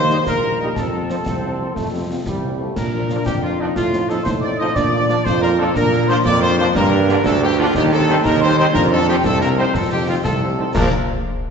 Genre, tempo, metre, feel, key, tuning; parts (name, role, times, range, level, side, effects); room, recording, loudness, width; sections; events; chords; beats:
military-style march for wind band; 120 BPM (dotted quarters); 6/8; straight; Bb major; A4 = 439 Hz
mellow trumpet section; melody; 0.0-10.9 s; Eb4 to Eb5; -24 LUFS; left 1 dB
hollow small flute group; second line; 0.0-10.9 s; Eb5 to Eb6; -25 LUFS; equal
mellow euphonium; second line; 0.0-10.5 s; A3 to F4; -23 LUFS; right 2 dB
mellow woodwind section; second line; 0.0-10.9 s; D4 to Eb5; -26 LUFS; left 1 dB
clear tuba; bass; 0.0-10.9 s; Bb1 to Bb2; -20 LUFS; right 1 dB
mellow French horn section; accompaniment; 0.1-10.9 s; F3 to Eb4; -27 LUFS; left 3 dB
warm trombone section; sustained chords; 0.1-10.9 s; D3 to Eb4; -27 LUFS; right 2 dB
concert snare drum, concert bass drum and clash cymbals; drums; 0.1-10.9 s; -26 LUFS; left 1 dB
wet scoring stage reverb, RT60 1.9 s; heard from further back in the room, nothing above 8.0 kHz; -15 LUFS; side -6 dB against mid
0.0-10.7 A section
0.0 Eb; 0.8 F; 2.8 Bb; 3.8 F7/A; 4.8 Bb; 6.8 Gm; 7.8 Cm/Eb; 8.7 F5; 10.7 Bb
0.27 | 0.77 1.27 | 1.77 2.27 | 2.77 3.26 | 3.76 4.26 | 4.76 5.26 | 5.76 6.25 | 6.75 7.25 | 7.75 8.25 | 8.75 9.25 | 9.75 10.25 | 10.74